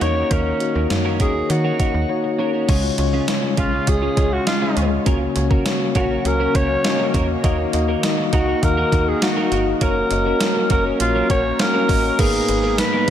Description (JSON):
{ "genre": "1980s-style pop", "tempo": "101 BPM", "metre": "4/4", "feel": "straight", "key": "unclear", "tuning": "A4 = 439 Hz", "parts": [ { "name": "growling alto saxophone", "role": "melody", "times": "0.0-13.1 s", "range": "C#4 to C#5", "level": "-22 LUFS", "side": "equal", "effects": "tape echo, shimmer reverb" }, { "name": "mellow tine electric piano", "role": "accompaniment", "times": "0.0-13.1 s", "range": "G#2 to E#5", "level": "-22 LUFS", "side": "left 3 dB", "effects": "medium stereo tremolo, shimmer reverb" }, { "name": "twelve-string electric guitar", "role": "riff", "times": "0.0-13.1 s", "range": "G#3 to A#4", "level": "-28 LUFS", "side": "right 4 dB", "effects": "analog chorus, tape echo, shimmer reverb" }, { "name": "slap-like FM bass", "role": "bass", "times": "0.0-13.1 s", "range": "F#1 to D#3", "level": "-23 LUFS", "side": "right 1 dB", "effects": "none" }, { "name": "clean 12-bit digital drum machine", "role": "drums", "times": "0.0-13.1 s", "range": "crash cymbal, hi-hat, kick drum, snare drum, tambourine", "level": "-22 LUFS", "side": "right 1 dB", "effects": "gated reverb" }, { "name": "sweeping resonant pad", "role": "sustained chords", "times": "2.7-13.1 s", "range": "C#3 to A#4", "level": "-30 LUFS", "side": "right 1 dB", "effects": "none" } ], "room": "moderate lush hall reverb, RT60 2.5 s", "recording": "none", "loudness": "-16 LUFS", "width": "side -10 dB against mid", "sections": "0.0-2.7 A section; 2.7-12.2 B section", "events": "none", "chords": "0.0 D#m7; 2.7 C#; 5.1 F#; 7.4 D#m; 9.8 F#; 12.2 G#madd9" }